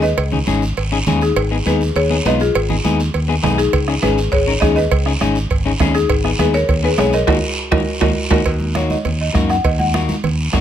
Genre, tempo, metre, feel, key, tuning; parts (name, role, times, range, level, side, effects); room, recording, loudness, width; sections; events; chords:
latin, cumbia; 203 BPM; 4/4; straight; A4 = 440 Hz
buzzing marimba with medium hard mallets; melody; 0.0-10.4 s; Eb4 to Gb5; -19 LUFS; left 2 dB
electric guitar at the edge of break-up; accompaniment; 0.0-10.6 s; Bb3 to Bb4; -21 LUFS; left 6 dB
fingered electric bass; bass; 0.0-10.6 s; Ab1 to Gb2; -19 LUFS; equal
guiro; percussion; 0.0-10.6 s; -27 LUFS; right 3 dB
congas; percussion; 0.2-10.6 s; -24 LUFS; right 3 dB
cowbell and timbales; percussion; 0.2-10.6 s; -23 LUFS; right 9 dB
bombo; percussion; 3.7-10.6 s; -20 LUFS; right 2 dB
light reverb; close, detailed microphones; -14 LUFS; side -10 dB against mid
0.0-8.5 A section; 8.5-10.6 B section
band accent 7.3-8.5; marimba solo 8.5-10.6
0.0 Dbsus2; 1.4 Abm; 3.7 Dbsus2; 6.1 Abm; 7.3 Ebm